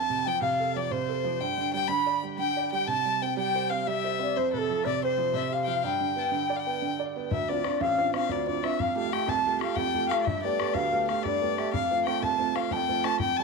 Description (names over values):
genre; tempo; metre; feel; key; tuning
celtic folk, Celtic slip jig; 122 BPM (dotted quarters); 9/8; straight; G mixolydian; A4 = 436 Hz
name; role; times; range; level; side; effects
mellow wooden flute; melody; 0.0-13.4 s; A4 to B5; -28 LUFS; left 1 dB; none
clear violin; second line; 0.0-13.4 s; A4 to B5; -32 LUFS; left 15 dB; tape echo
warm upright piano; accompaniment; 0.0-13.4 s; A1 to D5; -31 LUFS; right 10 dB; none
bodhran; percussion; 7.3-13.3 s; none; -35 LUFS; left 8 dB; none
room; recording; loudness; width
light reverb, small room ambience; 1960s-style stereo with parts hard left and right; -25 LUFS; side -3 dB against mid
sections
0.0-7.3 A section; 7.3-13.4 B section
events
none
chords
0.0 F; 1.4 G; 2.9 C; 4.4 Fadd9; 5.8 G; 7.3 Dm7; 8.8 Fadd9; 10.3 Gadd9; 11.7 F